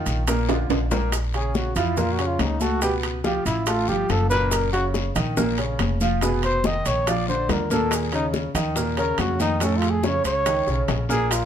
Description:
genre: Afro-Cuban jazz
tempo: 141 BPM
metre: 4/4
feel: straight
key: Bb minor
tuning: A4 = 440 Hz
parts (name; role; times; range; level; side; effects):
- warm concert grand piano; accompaniment; 0.0-11.4 s; A2 to A5; -26 LUFS; right 1 dB; none
- upright bass; bass; 0.1-11.5 s; F1 to F2; -26 LUFS; equal; none
- bongos; percussion; 0.1-11.5 s; none; -31 LUFS; left 7 dB; none
- congas; percussion; 0.1-11.5 s; none; -30 LUFS; left 2 dB; none
- guiro; percussion; 0.1-11.5 s; none; -36 LUFS; left 7 dB; none
- maracas; percussion; 0.1-11.5 s; none; -35 LUFS; right 5 dB; none
- timbales; percussion; 0.1-11.5 s; none; -30 LUFS; right 5 dB; none
- breathy trumpet; melody; 1.3-11.5 s; C#4 to Eb5; -24 LUFS; equal; none
room: light reverb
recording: none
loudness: -20 LUFS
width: side -9 dB against mid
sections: 0.0-1.1 A section; 1.1-11.5 B section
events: drum fill 0.5-1.1; trumpet solo 1.1-11.5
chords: 0.3 Bb; 1.1 Bbm; 2.8 Dbaug7; 4.5 Gb6; 6.2 Fm7b5; 7.1 Bb; 7.9 Ebsus2; 9.6 Faug7

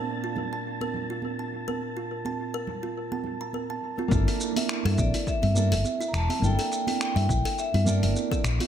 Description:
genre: sunset chillout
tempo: 104 BPM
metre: 4/4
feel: swing 56% on 16ths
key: G dorian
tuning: A4 = 440 Hz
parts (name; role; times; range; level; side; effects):
- nylon-string guitar; accompaniment; 0.0-8.4 s; Bb2 to A5; -33 LUFS; moving between left 1 dB and right 8 dB; auto-pan, analog delay
- kalimba; arpeggios; 0.0-8.7 s; E4 to Bb5; -35 LUFS; equal; analog delay
- wind-like tuned noise texture; texture; 0.0-4.1 s; A5 to A6; -38 LUFS; right 4 dB; built-in reverb
- congas; percussion; 0.4-8.7 s; none; -35 LUFS; right 6 dB; tape echo
- hollow-body short-scale fingered electric bass; bass; 4.1-8.6 s; E1 to G2; -24 LUFS; left 1 dB; none
- dusty soul sampler-style drum kit; drums; 4.1-8.7 s; finger snaps, hi-hat, shaker; -33 LUFS; equal; none
- electronic kick drum; drums; 4.1-8.4 s; none; -28 LUFS; left 1 dB; overdrive
- vibraphone with hard mallets; melody; 4.9-8.4 s; D5 to Bb5; -30 LUFS; equal; vintage 12-bit sampler grit, analog delay
room: light reverb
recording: echo-heavy mix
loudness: -24 LUFS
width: side -9 dB against mid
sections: 0.0-4.1 A section; 4.1-8.7 B section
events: none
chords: 0.0 Bbmaj7; 4.1 Gm69

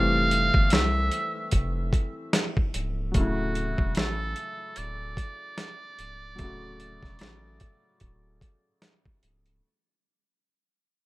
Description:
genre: lo-fi hip hop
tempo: 74 BPM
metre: 4/4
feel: swing 57% on 16ths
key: D major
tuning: A4 = 439 Hz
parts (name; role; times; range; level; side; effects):
- trumpet with metal mute; melody; 0.0-8.8 s; F#4 to F5; -30 LUFS; right 1 dB; low-pass filter, analog delay
- felt-muted upright piano; accompaniment; 0.0-9.7 s; C#3 to F#4; -32 LUFS; left 1 dB; cassette tape, low-pass filter
- saturated sub bass; bass; 0.0-9.6 s; C#1 to C2; -30 LUFS; equal; none
- dusty soul sampler-style drum kit; drums; 0.3-9.6 s; hi-hat, kick drum, snare drum; -25 LUFS; equal; none
room: little or no reverb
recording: rough home demo mix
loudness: -24 LUFS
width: side -20 dB against mid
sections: 0.0-9.6 A section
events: fade-out 0.0-9.6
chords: 0.0 Fmaj9; 3.1 Dmaj9

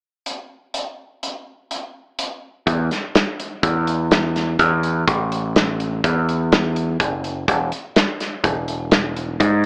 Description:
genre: math rock and midwest emo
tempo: 125 BPM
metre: 5/4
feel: straight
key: unclear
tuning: A4 = 438 Hz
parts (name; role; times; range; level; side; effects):
- modern studio drum kit; drums; 0.3-9.5 s; hi-hat, kick drum, snare drum; -22 LUFS; equal; none
- growling picked electric bass; bass; 2.7-9.7 s; E1 to G#2; -22 LUFS; equal; overdrive
room: light reverb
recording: AM radio sound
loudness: -20 LUFS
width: mono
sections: 0.3-2.7 A section; 2.7-9.7 B section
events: none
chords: none

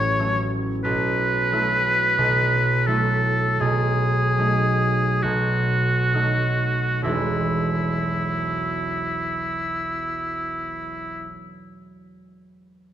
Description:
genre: classical, romantic duo for oboe and harp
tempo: 32-46 BPM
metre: 4/4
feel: rubato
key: E major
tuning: A4 = 438 Hz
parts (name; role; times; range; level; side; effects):
- clear oboe; melody; 0.0-11.3 s; E4 to C#5; -23 LUFS; left 1 dB; none
- concert harp; accompaniment; 0.0-11.3 s; E1 to E4; -23 LUFS; right 1 dB; none
room: moderate concert hall reverb, RT60 2.2 s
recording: minimal, uncompressed stereo recording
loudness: -20 LUFS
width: side -10 dB against mid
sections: 0.0-7.0 A section; 7.0-12.9 B section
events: slowing down 0.0-7.0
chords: 0.0 F#m/A; 0.8 B7sus4; 3.6 B7; 7.0 E

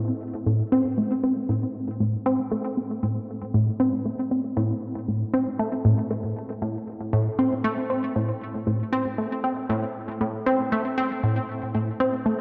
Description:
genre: ambient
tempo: 117 BPM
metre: 4/4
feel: straight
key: A minor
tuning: A4 = 440 Hz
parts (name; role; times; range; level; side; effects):
- tight sequenced synth; solo; 0.0-12.3 s; A2 to C4; -25 LUFS; equal; chorus, tape echo
room: wet plate reverb, RT60 3.8 s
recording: echo-heavy mix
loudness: -25 LUFS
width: mono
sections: 0.0-12.4 A section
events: none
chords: none

